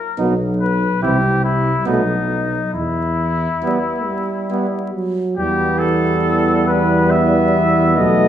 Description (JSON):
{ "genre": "classical, brass quintet", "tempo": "70 BPM", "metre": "3/4", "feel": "rubato", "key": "E minor", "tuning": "A4 = 437 Hz", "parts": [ { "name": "warm trumpet", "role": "melody", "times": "0.0-8.3 s", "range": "D#4 to E5", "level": "-20 LUFS", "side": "left 3 dB", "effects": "none" }, { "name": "clear flugelhorn", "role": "second line", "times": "0.2-8.3 s", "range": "B3 to E4", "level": "-23 LUFS", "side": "right 6 dB", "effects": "none" }, { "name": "warm French horn", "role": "accompaniment", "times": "0.2-8.3 s", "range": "G3 to C4", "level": "-22 LUFS", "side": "left 2 dB", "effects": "none" }, { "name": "warm trombone", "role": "accompaniment", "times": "0.2-8.3 s", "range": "E3 to B3", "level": "-23 LUFS", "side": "right 3 dB", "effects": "none" }, { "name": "mellow tuba", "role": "bass", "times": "0.2-8.3 s", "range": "B1 to E2", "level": "-20 LUFS", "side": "right 1 dB", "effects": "none" } ], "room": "wet recital hall reverb, RT60 1.6 s", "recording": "minimal, uncompressed stereo recording, vinyl crackle, faint mains hum", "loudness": "-15 LUFS", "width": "side -10 dB against mid", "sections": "0.0-5.4 A section; 5.4-8.3 B section", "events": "none", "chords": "0.2 B5; 1.0 C; 1.9 B7; 2.7 Em" }